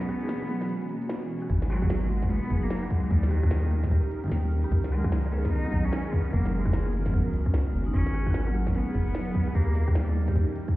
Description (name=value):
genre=IDM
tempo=149 BPM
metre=4/4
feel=swing 62% on 16ths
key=G# minor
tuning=A4 = 439 Hz
part: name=clear cello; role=melody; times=0.0-10.5 s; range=D#3 to D#4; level=-34 LUFS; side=right 1 dB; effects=digital delay
part: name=granular cloud pad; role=sustained chords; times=0.0-10.8 s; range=B2 to G#4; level=-36 LUFS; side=equal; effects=built-in reverb, vintage 12-bit sampler grit
part: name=vibraphone with medium mallets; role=arpeggios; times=0.0-10.6 s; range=F#3 to G#4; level=-35 LUFS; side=equal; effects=vintage 12-bit sampler grit, digital delay
part: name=glitchy drum kit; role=drums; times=0.0-10.7 s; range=hi-hat, rim click, snare drum, toms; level=-38 LUFS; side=equal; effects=overdrive
part: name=round analog bass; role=bass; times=1.5-10.4 s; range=F#1 to D#2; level=-26 LUFS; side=equal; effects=none
part: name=electronic kick drum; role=drums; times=1.5-10.7 s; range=none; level=-26 LUFS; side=equal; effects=none
part: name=pulsing gated texture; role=texture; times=1.5-10.8 s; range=A#4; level=-45 LUFS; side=right 3 dB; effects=chorus, built-in reverb
room=little or no reverb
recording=heard muffled through a wall, stone room reverb, EQ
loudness=-24 LUFS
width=side -17 dB against mid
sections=0.0-10.8 A section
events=break 0.0-1.5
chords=0.0 F#7sus4; 1.5 G#m7; 3.1 D#7; 4.7 C#5; 6.3 F#sus4; 7.9 G#m7; 9.6 D#7b9